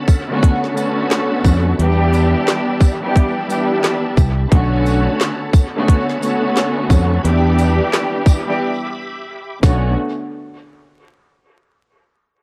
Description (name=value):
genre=hip hop, boom-bap hip-hop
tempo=88 BPM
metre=4/4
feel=swing 62% on 16ths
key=B minor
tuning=A4 = 440 Hz
part: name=muted studio string section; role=accompaniment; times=0.0-9.9 s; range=D3 to G4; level=-20 LUFS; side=equal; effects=cassette tape, high-pass filter, low-pass filter
part: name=bright tonewheel organ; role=sustained chords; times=0.0-9.9 s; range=B2 to D6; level=-31 LUFS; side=equal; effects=overdrive, chorus vibrato, slow rotary speaker, high-pass filter, low-pass filter
part: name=garage drum kit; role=drums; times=0.1-9.8 s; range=handclaps, hi-hat, kick drum, shaker, snare drum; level=-16 LUFS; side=equal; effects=none
part: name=tambourine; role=percussion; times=0.1-9.9 s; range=none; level=-39 LUFS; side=equal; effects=dub echo
part: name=fingered electric bass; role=bass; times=1.4-9.9 s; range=B1 to E#2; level=-18 LUFS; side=equal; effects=none
room=little or no reverb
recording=echo-heavy mix, vinyl crackle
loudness=-16 LUFS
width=mono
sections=0.0-10.0 A section; 10.0-12.4 B section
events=break 8.6-10.0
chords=0.0 Bm9; 1.8 Em7; 4.5 Bm9; 7.2 Em7; 9.6 Bm9; 10.0 N.C.